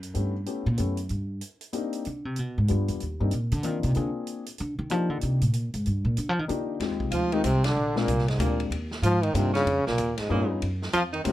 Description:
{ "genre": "jazz, small-group swing and bop", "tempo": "189 BPM", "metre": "3/4", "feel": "swing 63% on 8ths", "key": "Eb major", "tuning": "A4 = 441 Hz", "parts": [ { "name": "upright bass", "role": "bass", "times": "0.0-11.3 s", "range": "Bb1 to F3", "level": "-26 LUFS", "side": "equal", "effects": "none" }, { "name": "vintage drum kit", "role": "drums", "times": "0.0-11.3 s", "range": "hi-hat, kick drum, ride cymbal, snare drum", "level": "-38 LUFS", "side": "right 1 dB", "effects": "none" }, { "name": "dark grand piano", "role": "accompaniment", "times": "0.1-11.3 s", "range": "G3 to Ab4", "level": "-30 LUFS", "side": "left 5 dB", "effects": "none" }, { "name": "warm trombone", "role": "melody", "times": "7.1-11.3 s", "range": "Ab2 to F3", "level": "-26 LUFS", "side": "left 1 dB", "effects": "none" }, { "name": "clear alto saxophone", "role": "second line", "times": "7.1-11.3 s", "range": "Ab3 to F4", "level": "-31 LUFS", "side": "right 4 dB", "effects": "none" } ], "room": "light reverb", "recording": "none", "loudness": "-24 LUFS", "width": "side -14 dB against mid", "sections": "0.0-6.8 A section; 6.8-11.3 B section", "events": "upright bass solo 0.0-6.8; band accent 7.6", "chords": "0.1 A9; 1.1 Gmadd11; 2.0 G7; 3.0 Cm7; 3.9 Bb7; 4.9 Ebmaj9; 6.8 Fm7; 7.8 Bb7; 8.7 Ebmaj7; 9.7 Db7; 10.6 Gbmaj7(no3)" }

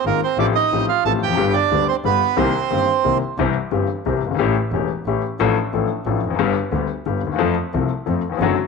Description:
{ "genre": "tango", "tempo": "179 BPM", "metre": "3/4", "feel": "rubato", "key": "C minor, C major from 3.4 s", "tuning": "A4 = 440 Hz", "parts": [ { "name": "bandoneon", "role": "melody", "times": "0.0-3.2 s", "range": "Bb3 to A5", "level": "-18 LUFS", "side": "right 10 dB", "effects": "none" }, { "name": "clear grand piano", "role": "accompaniment", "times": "0.1-8.6 s", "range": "E1 to A4", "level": "-20 LUFS", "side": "left 9 dB", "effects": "none" }, { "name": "clear double bass", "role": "bass", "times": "0.1-8.5 s", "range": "E1 to F2", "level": "-25 LUFS", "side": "right 3 dB", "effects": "none" } ], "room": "wet spring reverb, RT60 1.2 s, small room ambience", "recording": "1960s-style stereo with parts hard left and right", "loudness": "-17 LUFS", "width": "side -4 dB against mid", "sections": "0.0-3.4 A section; 3.4-8.7 B section", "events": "none", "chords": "0.4 Fadd9/A; 1.4 G; 2.4 Cm7; 3.4 C; 4.4 A7; 5.4 Dm/A; 6.4 G; 7.4 F" }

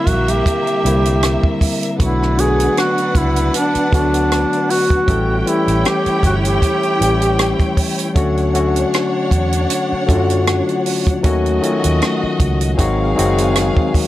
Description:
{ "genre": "lush 1970s-style soul", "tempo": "78 BPM", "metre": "4/4", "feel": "swing 54% on 16ths", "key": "unclear", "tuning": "A4 = 440 Hz", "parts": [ { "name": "warm duduk", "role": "melody", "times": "0.0-7.7 s", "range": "D4 to G#4", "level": "-18 LUFS", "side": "right 1 dB", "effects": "none" }, { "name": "warm studio string section", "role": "second line", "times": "0.0-14.1 s", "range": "G3 to G5", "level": "-22 LUFS", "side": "equal", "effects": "none" }, { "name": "barky tine electric piano", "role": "accompaniment", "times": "0.0-14.1 s", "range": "D3 to A4", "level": "-19 LUFS", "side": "left 3 dB", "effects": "none" }, { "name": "vintage muted fingered electric bass", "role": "bass", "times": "0.1-13.7 s", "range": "F#1 to F#2", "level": "-19 LUFS", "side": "right 1 dB", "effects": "none" }, { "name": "compact cocktail drum kit", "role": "drums", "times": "0.1-14.1 s", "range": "hi-hat, kick drum, rim click", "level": "-19 LUFS", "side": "right 1 dB", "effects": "none" } ], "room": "light reverb", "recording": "none", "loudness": "-14 LUFS", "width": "side -14 dB against mid", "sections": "0.0-14.1 A section", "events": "none", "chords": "0.0 C9; 2.0 Bm7; 5.1 A7; 8.2 Dmaj7; 11.2 D#m7b5; 12.8 G#7" }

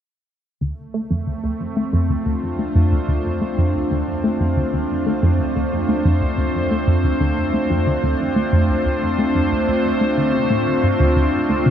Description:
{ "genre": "ambient, sequencer-driven space music", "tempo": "91 BPM", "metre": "4/4", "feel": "straight", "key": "D minor", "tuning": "A4 = 444 Hz", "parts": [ { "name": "evolving wavetable pad", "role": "sustained chords", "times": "1.0-11.7 s", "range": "A3 to C5", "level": "-20 LUFS", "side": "equal", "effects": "chorus, built-in reverb, shimmer reverb" }, { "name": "tight sequenced synth", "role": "riff", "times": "0.6-11.7 s", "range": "D2 to A3", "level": "-19 LUFS", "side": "equal", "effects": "chorus, tape echo" }, { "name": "fat analog bass", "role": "bass", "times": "0.6-11.7 s", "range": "D2", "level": "-37 LUFS", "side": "equal", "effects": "none" } ], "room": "wet cathedral reverb, RT60 7.3 s", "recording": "in a vast, echoing space", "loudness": "-17 LUFS", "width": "side -9 dB against mid", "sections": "0.6-11.7 A section", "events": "filter sweep on synth arpeggio sound 0.6-11.7", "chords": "0.6 Dm7" }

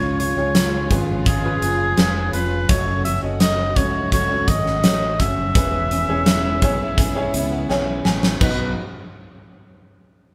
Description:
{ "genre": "piano-driven pop", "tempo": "84 BPM", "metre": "4/4", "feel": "straight", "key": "B mixolydian", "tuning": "A4 = 442 Hz", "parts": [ { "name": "warm oboe", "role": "melody", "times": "0.0-8.7 s", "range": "G#4 to E5", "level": "-26 LUFS", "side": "equal", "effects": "none" }, { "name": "clear upright piano", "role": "accompaniment", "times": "0.0-8.7 s", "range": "B1 to G#5", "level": "-29 LUFS", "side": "equal", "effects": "none" }, { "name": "warm studio string section", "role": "sustained chords", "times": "0.0-8.7 s", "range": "C#3 to F#4", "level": "-37 LUFS", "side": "equal", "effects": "none" }, { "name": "picked steel-string acoustic guitar", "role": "riff", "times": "0.0-8.7 s", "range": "F#2 to G#4", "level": "-30 LUFS", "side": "equal", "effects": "none" }, { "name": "fingered electric bass", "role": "bass", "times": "0.0-8.7 s", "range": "E1 to C#2", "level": "-27 LUFS", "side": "equal", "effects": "none" }, { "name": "huge arena drum kit", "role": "drums", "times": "0.2-8.6 s", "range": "crash cymbal, hi-hat, kick drum, snare drum", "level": "-23 LUFS", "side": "equal", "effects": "none" } ], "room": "moderate large studio reverb, RT60 1.0 s", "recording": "band playing live in one room", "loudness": "-19 LUFS", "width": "mono", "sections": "0.0-8.4 A section; 8.4-10.3 B section", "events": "upright piano fill 7.0-8.4; drum fill 7.7-8.4", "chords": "0.0 C#; 2.7 F#m; 5.6 E6; 8.4 B" }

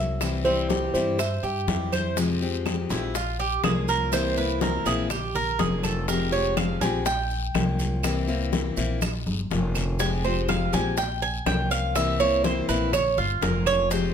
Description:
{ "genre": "latin, Cuban son and guajira", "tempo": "123 BPM", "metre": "4/4", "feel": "straight", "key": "unclear", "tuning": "A4 = 440 Hz", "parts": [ { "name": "nylon-string guitar", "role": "melody", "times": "0.0-1.6 s", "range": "C5 to E5", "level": "-27 LUFS", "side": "equal", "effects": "none" }, { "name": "picked steel-string acoustic guitar", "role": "accompaniment", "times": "0.0-14.1 s", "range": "C3 to G4", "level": "-28 LUFS", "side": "left 5 dB", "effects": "none" }, { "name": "upright bass", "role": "bass", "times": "0.0-14.1 s", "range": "F1 to G2", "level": "-29 LUFS", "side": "equal", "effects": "none" }, { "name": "bongos", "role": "percussion", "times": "0.2-14.1 s", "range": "none", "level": "-34 LUFS", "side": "left 8 dB", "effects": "none" }, { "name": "claves", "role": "percussion", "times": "0.2-13.9 s", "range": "none", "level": "-36 LUFS", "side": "right 8 dB", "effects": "none" }, { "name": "congas", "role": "percussion", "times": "0.2-14.1 s", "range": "none", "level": "-32 LUFS", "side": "left 1 dB", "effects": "none" }, { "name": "guiro", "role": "percussion", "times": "0.2-14.1 s", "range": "none", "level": "-39 LUFS", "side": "left 6 dB", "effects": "none" }, { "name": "maracas", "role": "percussion", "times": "0.2-14.1 s", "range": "none", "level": "-38 LUFS", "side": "right 6 dB", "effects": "none" }, { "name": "Cuban tres", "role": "arpeggios", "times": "0.4-14.1 s", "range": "C4 to Ab5", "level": "-26 LUFS", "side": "right 4 dB", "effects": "none" } ], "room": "light reverb", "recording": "close, detailed microphones", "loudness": "-22 LUFS", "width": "side -8 dB against mid", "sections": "0.0-2.2 A section; 2.2-14.1 B section", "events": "Cuban tres solo 2.2-14.1; drum fill 9.0-10.0", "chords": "0.2 C; 2.2 Fmadd9; 3.1 Bbm; 4.1 C7; 5.1 Bbm; 6.1 Fmadd9; 7.1 Bbm; 8.0 C7; 9.0 Bbm; 10.0 Fmadd9; 11.0 Bbm; 12.0 C7; 12.9 Bbm" }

